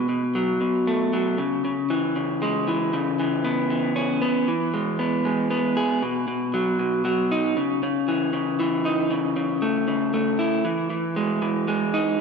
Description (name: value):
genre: rock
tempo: 117 BPM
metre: 3/4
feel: straight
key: E major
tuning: A4 = 442 Hz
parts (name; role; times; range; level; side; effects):
- electric guitar through a small old amp; solo; 0.0-12.2 s; B2 to G#4; -21 LUFS; equal; slapback echo, analog delay
room: wet concert hall reverb, RT60 1.8 s, digital ambience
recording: big arena sound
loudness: -21 LUFS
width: side -5 dB against mid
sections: 0.0-4.5 A section; 4.5-12.2 B section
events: build-up 0.0-4.5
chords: 0.0 B5; 1.4 C#m; 2.9 C#m7; 4.5 E; 6.0 B; 7.6 C#madd9; 9.1 A/C#; 10.7 Emaj7